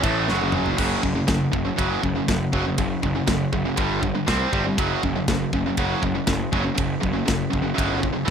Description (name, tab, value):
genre	heavy metal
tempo	120 BPM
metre	4/4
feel	straight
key	F# phrygian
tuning	A4 = 440 Hz
part	high-gain distorted guitar	riff	0.0-8.3 s	F#2 to C4	-23 LUFS	right 1 dB	distortion
part	fuzz picked electric bass	bass	0.0-8.3 s	F#1 to C2	-26 LUFS	equal	overdrive
part	tight metal drum kit	drums	0.0-8.3 s	crash cymbal, kick drum, ride cymbal, snare drum, toms	-26 LUFS	equal	none
room	small room ambience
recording	rough home demo mix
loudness	-20 LUFS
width	side -7 dB against mid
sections	0.8-8.3 A section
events	drum fill 0.3-0.8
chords	0.0 F#m; 0.8 F#5; 3.8 G5; 4.3 C5; 4.8 F#5